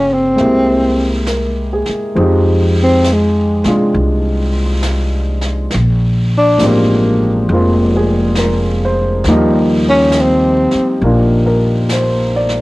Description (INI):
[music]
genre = jazz ballad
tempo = 68 BPM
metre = 4/4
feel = swing 68% on 8ths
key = unclear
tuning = A4 = 440 Hz
[part]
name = breathy tenor saxophone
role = melody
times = 0.0-11.1 s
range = Ab3 to D4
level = -12 LUFS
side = equal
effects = cassette tape
[part]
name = warm upright piano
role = accompaniment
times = 0.0-12.6 s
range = Db3 to D5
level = -15 LUFS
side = equal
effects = cassette tape
[part]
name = upright bass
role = bass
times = 0.0-12.6 s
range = F1 to C3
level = -16 LUFS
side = equal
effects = none
[part]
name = jazz brush drum kit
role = drums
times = 0.4-12.6 s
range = brushed snare drum, hi-hat, snare drum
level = -26 LUFS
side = right 1 dB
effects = cassette tape
[sound]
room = light reverb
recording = home recording on cassette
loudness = -11 LUFS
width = side -20 dB against mid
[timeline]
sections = 0.0-2.2 A section; 2.2-12.6 B section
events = tenor saxophone solo 2.2-12.6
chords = 0.4 C7b13; 2.2 Fm9; 5.7 Bb13; 9.2 Eb69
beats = 0.39 1.28 | 2.17 3.06 3.94 4.83 | 5.71 6.60 7.48 8.37 | 9.25 10.13 11.01 11.90